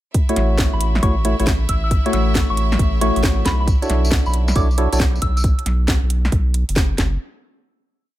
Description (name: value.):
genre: UK garage, two-step garage.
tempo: 136 BPM.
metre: 4/4.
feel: swing 67% on 16ths.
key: B minor.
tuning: A4 = 440 Hz.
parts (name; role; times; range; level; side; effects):
bright studio violin section; sustained chords; 0.1-5.5 s; E4 to E5; -34 LUFS; equal; sidechain pumping.
electronic kick drum; drums; 0.1-7.1 s; none; -19 LUFS; equal; none.
house drum kit; drums; 0.1-7.1 s; hi-hat, snare drum; -23 LUFS; equal; none.
percussive organ stab; stabs; 0.3-5.0 s; A3 to C#5; -23 LUFS; left 1 dB; chorus, tape echo.
saturated sub bass; bass; 0.4-7.2 s; F#1 to B1; -19 LUFS; equal; none.
soft synth bell; melody; 0.7-5.4 s; B5 to E6; -27 LUFS; equal; chorus, tremolo, tape echo.
tambourine; percussion; 3.7-5.4 s; none; -32 LUFS; left 4 dB; none.
room: digital ambience.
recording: none.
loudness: -15 LUFS.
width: side -15 dB against mid.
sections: 0.1-7.2 drop.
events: drop 0.1-7.2.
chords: 0.1 A6; 3.7 Bm11.